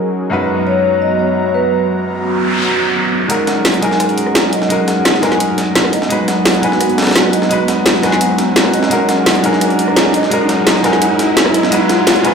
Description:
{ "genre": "liquid drum and bass", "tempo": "171 BPM", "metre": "4/4", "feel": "straight", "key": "F# major", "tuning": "A4 = 439 Hz", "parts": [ { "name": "bright grand piano", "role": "accompaniment", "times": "0.0-12.3 s", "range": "F#2 to B4", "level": "-17 LUFS", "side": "equal", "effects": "none" }, { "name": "warm analog pad", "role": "sustained chords", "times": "0.0-12.3 s", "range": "F#3 to A#5", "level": "-18 LUFS", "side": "right 1 dB", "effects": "chorus, tremolo" }, { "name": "vibraphone with soft mallets", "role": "melody", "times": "0.7-12.3 s", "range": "F#4 to G#5", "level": "-19 LUFS", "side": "left 1 dB", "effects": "ping-pong delay" }, { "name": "noise sweep and riser", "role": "sound effects", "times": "2.1-12.3 s", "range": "none", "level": "-20 LUFS", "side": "right 2 dB", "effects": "none" }, { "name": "breakbeat sampler-style drum kit", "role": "drums", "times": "3.3-12.3 s", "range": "hi-hat, snare drum", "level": "-19 LUFS", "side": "right 1 dB", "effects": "high-pass filter on hats, high-pass filter on snare" }, { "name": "drum and bass drum kit", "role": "drums", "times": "3.3-12.3 s", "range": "hi-hat, rim click, snare drum", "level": "-16 LUFS", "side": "equal", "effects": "none" } ], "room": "moderate lush hall reverb, RT60 2.2 s", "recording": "played on a big sound system in a bare room, large studio reverb", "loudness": "-11 LUFS", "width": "side -6 dB against mid", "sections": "0.0-3.3 A section; 3.3-12.3 B section", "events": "noise sweep 2.1-3.3; build-up 3.3-12.3; riser 3.3-12.3; filter sweep on analog synth pad 3.3-12.3", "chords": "0.3 G#m7/F#; 3.3 F#69; 5.9 G#m7/F#; 8.9 F#69; 11.5 G#m7/F#" }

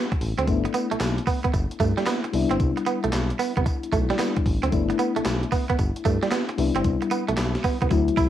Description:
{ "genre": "R&B, new jack swing", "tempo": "113 BPM", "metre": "4/4", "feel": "swing 66% on 16ths", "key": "G major", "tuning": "A4 = 440 Hz", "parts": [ { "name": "mellow FM electric piano", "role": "accompaniment", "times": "0.0-8.3 s", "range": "F#3 to E4", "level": "-27 LUFS", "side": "left 7 dB", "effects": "chorus, tremolo, cassette tape" }, { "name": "direct-recorded clean electric guitar", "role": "riff", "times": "0.0-8.3 s", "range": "G3 to E4", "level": "-26 LUFS", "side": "right 6 dB", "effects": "wide subtle chorus, cassette tape" }, { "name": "gated 80s digital drum machine", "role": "drums", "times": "0.1-8.3 s", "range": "handclaps, hi-hat, kick drum, snare drum, tambourine", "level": "-26 LUFS", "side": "equal", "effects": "gated reverb, gated reverb snare, cassette tape" }, { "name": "smooth synth bass", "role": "bass", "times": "0.2-8.3 s", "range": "G1 to G2", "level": "-26 LUFS", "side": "equal", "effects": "none" } ], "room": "moderate studio reverb, RT60 0.6 s", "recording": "home recording on cassette", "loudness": "-21 LUFS", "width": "side -11 dB against mid", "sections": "0.0-8.3 A section", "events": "none", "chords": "0.0 G6" }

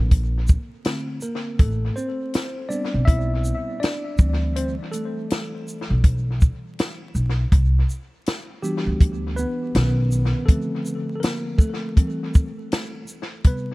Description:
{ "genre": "hip hop, jazz-hop", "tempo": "81 BPM", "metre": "4/4", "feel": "swing 63% on 16ths", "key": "unclear", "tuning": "A4 = 440 Hz", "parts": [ { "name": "tine electric piano", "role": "accompaniment", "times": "0.0-13.7 s", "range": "C3 to E5", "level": "-27 LUFS", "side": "equal", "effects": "medium stereo tremolo, tape echo" }, { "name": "upright bass", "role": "bass", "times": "0.0-10.3 s", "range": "A1 to D2", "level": "-21 LUFS", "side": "equal", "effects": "none" }, { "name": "compact cocktail drum kit", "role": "drums", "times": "0.1-13.7 s", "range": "hi-hat, kick drum, shaker, snare drum", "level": "-18 LUFS", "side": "equal", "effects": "tape echo" } ], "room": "little or no reverb", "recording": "echo-heavy mix, vinyl crackle", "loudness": "-20 LUFS", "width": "side -21 dB against mid", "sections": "0.0-13.4 A section", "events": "tine electric piano solo 0.0-13.4", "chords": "0.0 Bbmaj7; 1.6 Am9; 4.2 D7sus4; 7.5 Cmaj9#11; 9.7 Bmaj7; 10.5 Bbmaj7; 12.0 Emadd11" }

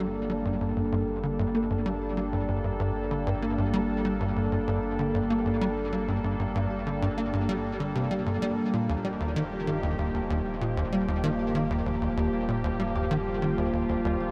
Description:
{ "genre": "ambient, sequencer-driven space music", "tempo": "96 BPM", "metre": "4/4", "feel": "straight", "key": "G minor", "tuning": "A4 = 436 Hz", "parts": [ { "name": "evolving wavetable pad", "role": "sustained chords", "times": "0.0-14.3 s", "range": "Eb3 to A4", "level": "-32 LUFS", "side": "equal", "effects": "chorus, built-in reverb" }, { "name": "concert harp", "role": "arpeggios", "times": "0.0-14.3 s", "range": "G2 to D5", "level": "-41 LUFS", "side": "equal", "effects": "none" }, { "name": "tight sequencer bass", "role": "riff", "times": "0.0-14.2 s", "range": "Eb2 to Bb3", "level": "-32 LUFS", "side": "equal", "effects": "lush chorus, tape echo" }, { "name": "warm sub bass", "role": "bass", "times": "0.0-14.3 s", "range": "Eb1 to G1", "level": "-40 LUFS", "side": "equal", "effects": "none" } ], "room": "wet huge ambient reverb, RT60 7.9 s", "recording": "none", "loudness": "-28 LUFS", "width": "mono", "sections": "0.0-14.3 A section", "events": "none", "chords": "0.0 Gmadd9; 8.6 Ebadd9" }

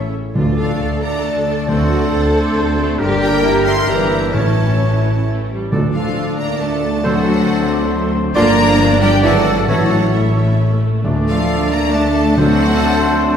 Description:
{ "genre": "classical, dramatic, fast romantic movement for symphony orchestra", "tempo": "135 BPM", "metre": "3/4", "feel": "rubato", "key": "unclear", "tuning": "A4 = 440 Hz", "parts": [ { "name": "bright symphonic violin section", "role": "melody", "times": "0.0-13.4 s", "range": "E5 to C6", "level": "-26 LUFS", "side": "left 3 dB", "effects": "none" }, { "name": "flute section", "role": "second line", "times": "0.0-13.4 s", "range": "A4 to E5", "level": "-24 LUFS", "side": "right 1 dB", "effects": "none" }, { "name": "rich symphonic violin section", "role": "second line", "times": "0.0-13.4 s", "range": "D4 to Bb4", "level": "-26 LUFS", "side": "left 2 dB", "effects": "none" }, { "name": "warm clarinet", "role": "second line", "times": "0.0-13.4 s", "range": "D4 to A4", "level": "-26 LUFS", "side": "equal", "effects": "none" }, { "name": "warm oboe", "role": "second line", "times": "0.0-13.4 s", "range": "Bb4 to D5", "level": "-27 LUFS", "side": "right 1 dB", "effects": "none" }, { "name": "mellow bassoon", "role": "accompaniment", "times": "0.0-13.4 s", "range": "C#3 to A3", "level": "-25 LUFS", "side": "right 1 dB", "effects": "none" }, { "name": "rich symphonic viola section", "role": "accompaniment", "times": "0.0-13.4 s", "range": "E3 to D4", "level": "-24 LUFS", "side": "right 2 dB", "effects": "none" }, { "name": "mellow French horn section", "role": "sustained chords", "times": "0.0-13.4 s", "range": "E3 to E4", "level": "-22 LUFS", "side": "left 3 dB", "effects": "none" }, { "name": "concert harp", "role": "arpeggios", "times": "0.0-13.4 s", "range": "G2 to E6", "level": "-24 LUFS", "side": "left 4 dB", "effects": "none" }, { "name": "dark trumpet section", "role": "stabs", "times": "0.0-13.4 s", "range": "Bb4 to D5", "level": "-25 LUFS", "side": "right 2 dB", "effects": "none" }, { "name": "rich symphonic cello section", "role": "bass", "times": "0.0-13.4 s", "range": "E3 to A4", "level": "-22 LUFS", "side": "right 3 dB", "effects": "none" }, { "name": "rich symphonic double bass section", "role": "bass", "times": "0.0-13.4 s", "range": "G1 to D2", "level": "-20 LUFS", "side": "right 1 dB", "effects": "none" }, { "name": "timpani", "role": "percussion", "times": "0.4-2.3, 4.3-13.0 s", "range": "A2 to D3", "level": "-22 LUFS", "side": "equal", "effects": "none" } ], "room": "wet scoring stage reverb, RT60 1.5 s", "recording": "heard from further back in the room", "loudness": "-13 LUFS", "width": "side -8 dB against mid", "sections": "0.0-5.7 A section; 5.7-13.4 B section", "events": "none", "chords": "0.4 Dm; 1.7 D7; 3.0 Gm; 4.3 A; 5.7 Dm; 7.1 D7; 8.4 Gm7; 9.2 E7/G#; 9.7 A; 11.0 Dm; 12.4 D7" }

